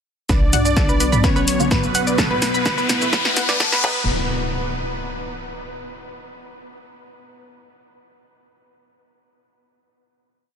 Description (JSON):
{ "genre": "melodic techno", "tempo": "127 BPM", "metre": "4/4", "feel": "straight", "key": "B minor", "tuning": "A4 = 440 Hz", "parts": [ { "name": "wide unison lead", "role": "melody", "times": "0.3-4.0 s", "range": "B3 to D4", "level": "-28 LUFS", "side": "left 1 dB", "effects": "sidechain pumping, tape echo" }, { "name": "big bright polysynth", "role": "second line", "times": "0.3-4.0 s", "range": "B4 to D5", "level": "-27 LUFS", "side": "right 4 dB", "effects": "chorus, vintage 12-bit sampler grit, sidechain pumping, ping-pong delay" }, { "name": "evolving wavetable pad", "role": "sustained chords", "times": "1.0-4.1 s", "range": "A2 to F#4", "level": "-29 LUFS", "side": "left 3 dB", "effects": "ensemble chorus, built-in reverb, vintage 12-bit sampler grit, sidechain pumping" }, { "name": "analog pluck", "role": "arpeggios", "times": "0.3-4.1 s", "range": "A4 to B5", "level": "-26 LUFS", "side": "equal", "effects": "chorus, sidechain pumping, ping-pong delay" }, { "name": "tight sequencer bass", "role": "bass", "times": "0.3-4.1 s", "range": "B1", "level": "-26 LUFS", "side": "equal", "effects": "sidechain pumping" }, { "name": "bowed-like drone", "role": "drone", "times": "1.0-4.1 s", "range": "B2 to B3", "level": "-32 LUFS", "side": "right 3 dB", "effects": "none" }, { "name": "electronic kick drum", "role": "drums", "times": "0.3-3.9 s", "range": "none", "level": "-20 LUFS", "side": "equal", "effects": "overdrive" }, { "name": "punchy analog drum machine", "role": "drums", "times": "0.3-3.9 s", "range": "crash cymbal, hi-hat, shaker, snare drum, toms", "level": "-23 LUFS", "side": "equal", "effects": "none" }, { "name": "riser and impact", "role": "sound effects", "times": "1.8-5.7 s", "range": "none", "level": "-24 LUFS", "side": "left 2 dB", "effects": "none" }, { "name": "filtered dub chord stab", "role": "stabs", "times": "1.6-4.0 s", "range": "B2 to F#4", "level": "-31 LUFS", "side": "equal", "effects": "phaser, ensemble chorus, sidechain pumping, ping-pong delay" } ], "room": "light reverb, digital ambience", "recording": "dense, heavily limited modern master, high-pass filter", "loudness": "-16 LUFS", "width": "side -7 dB against mid", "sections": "0.3-4.1 build; 4.1-6.0 final hit", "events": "build-up 0.3-4.1; drum fill 0.3-4.1; filter sweep on analog synth lead 0.3-4.1; filter sweep 0.3-4.1; riser 1.8-4.1", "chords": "0.3 Bm; 2.2 Asus2/B; 3.8 B; 4.1 N.C.", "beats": "| 0.29 0.77 1.24 1.71 | 2.18 2.66 3.13 3.60 | 4.07 4.55 5.02 5.49" }